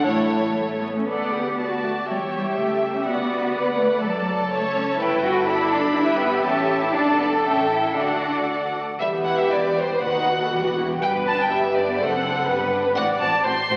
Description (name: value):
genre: quick classical-period movement for string orchestra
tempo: 114-126 BPM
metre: 2/4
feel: rubato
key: D major, E minor from 9.0 s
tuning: A4 = 440 Hz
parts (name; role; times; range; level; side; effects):
- warm chamber violin section; melody; 0.0-13.8 s; C5 to C6; -28 LUFS; equal; none
- rich studio violin section; second line; 0.0-13.8 s; G3 to C#5; -28 LUFS; equal; none
- warm symphonic viola section; accompaniment; 0.0-13.8 s; A3 to E5; -27 LUFS; equal; none
- warm chamber cello section; bass; 0.0-13.8 s; D#2 to F#4; -29 LUFS; equal; none
- warm studio double bass section; bass; 0.0-13.8 s; E1 to E2; -38 LUFS; equal; none
room: wet scoring stage reverb, RT60 1.9 s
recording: very old 78 rpm record, vinyl crackle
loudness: -22 LUFS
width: mono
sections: 0.0-1.1 A section; 1.1-9.0 B section; 9.0-13.8 C section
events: none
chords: 0.0 A; 1.1 D; 2.1 A7/E; 3.1 D; 4.0 D/F#; 5.0 Em7/G; 6.0 A7/G; 6.9 D/F#; 7.4 A7; 8.0 D; 9.0 Em; 10.0 B7/D#; 10.5 Em; 11.0 G; 12.0 D7/F#; 12.5 G; 13.0 F#dim/A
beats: | 0.04 0.56 | 1.08 1.58 | 2.08 2.57 | 3.07 3.55 | 4.03 4.51 | 5.00 5.48 | 5.97 6.45 | 6.94 7.44 | 7.96 8.48 | 9.00 9.50 | 10.02 10.52 | 11.02 11.52 | 12.00 12.48 | 12.96 13.45